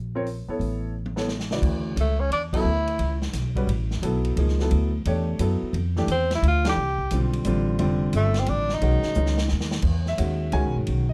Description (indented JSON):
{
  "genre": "modal jazz",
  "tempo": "175 BPM",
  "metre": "3/4",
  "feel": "swing 65% on 8ths",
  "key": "unclear",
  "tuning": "A4 = 440 Hz",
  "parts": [
    { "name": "upright bass", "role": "bass", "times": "0.0-11.1 s", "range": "F1 to F#2", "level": "-26 LUFS", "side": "equal", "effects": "none" },
    { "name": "clear concert grand piano", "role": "accompaniment", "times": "0.2-11.1 s", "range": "C#3 to G#5", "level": "-30 LUFS", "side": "equal", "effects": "none" },
    { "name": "vintage drum kit", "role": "drums", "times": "0.3-11.0 s", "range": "crash cymbal, hi-hat, kick drum, ride cymbal, snare drum, toms", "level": "-34 LUFS", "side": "equal", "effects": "none" },
    { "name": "warm tenor saxophone", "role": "melody", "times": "2.0-3.2, 6.1-9.5 s", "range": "A3 to G4", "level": "-28 LUFS", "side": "equal", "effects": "none" }
  ],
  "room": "light reverb",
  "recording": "dark, warm production",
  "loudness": "-24 LUFS",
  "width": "mono",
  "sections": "0.0-1.6 A section; 1.6-9.8 B section; 9.8-11.1 C section",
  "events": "drum fill 0.9-1.6, 9.2-9.8; band accent 2.5, 6.6",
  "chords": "0.0 F#maj7 (rootless); 0.6 A; 1.6 Dmaj9; 5.7 Fmaj9; 8.8 B; 9.8 Emaj9",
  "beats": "0.25 | 0.60 0.94 1.28 | 1.63 1.97 2.31 | 2.66 3.00 3.34 | 3.68 4.03 4.37 | 4.71 5.05 5.40 | 5.74 6.08 6.42 | 6.77 7.11 7.45 | 7.79 8.14 8.48 | 8.82 9.16 9.51 | 9.85 10.19 10.53 | 10.87"
}